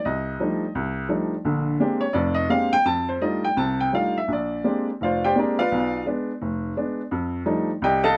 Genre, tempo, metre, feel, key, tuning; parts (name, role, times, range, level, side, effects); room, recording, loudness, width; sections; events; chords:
solo jazz; 170 BPM; 4/4; swing 64% on 8ths, rubato; F mixolydian; A4 = 443 Hz
warm upright piano; solo; 0.0-8.2 s; F1 to A5; -24 LUFS; equal
light reverb; close, detailed microphones; -24 LUFS; mono
0.0-8.2 A section
upright piano solo 0.0-8.2
0.0 F13; 1.5 Bb13; 2.9 F13; 4.3 Bb13; 5.7 Bdim7; 7.1 F13